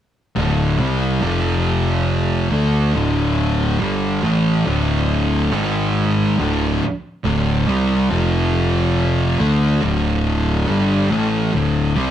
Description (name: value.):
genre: metal.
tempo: 70 BPM.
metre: 4/4.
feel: straight.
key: D minor.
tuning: A4 = 439 Hz.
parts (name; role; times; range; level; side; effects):
thick fuzz guitar; riff; 0.4-12.1 s; D2 to D4; -21 LUFS; left 5 dB; distortion.
thick fuzz guitar; riff; 0.4-12.1 s; D2 to D4; -19 LUFS; right 3 dB; distortion.
fuzz picked electric bass; bass; 0.4-12.1 s; D1 to D2; -21 LUFS; equal; overdrive.
room: moderate studio reverb, RT60 0.8 s.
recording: band playing live in one room.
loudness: -16 LUFS.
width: side -10 dB against mid.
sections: 0.0-12.1 A section.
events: none.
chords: 0.0 D5; 1.2 F5; 2.5 D5; 5.5 G#5; 6.4 D5; 8.1 F5; 9.4 D5.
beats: 0.79 1.65 2.51 | 3.38 4.24 5.10 5.96 | 6.82 7.67 8.53 9.39 | 10.25 11.11 11.96.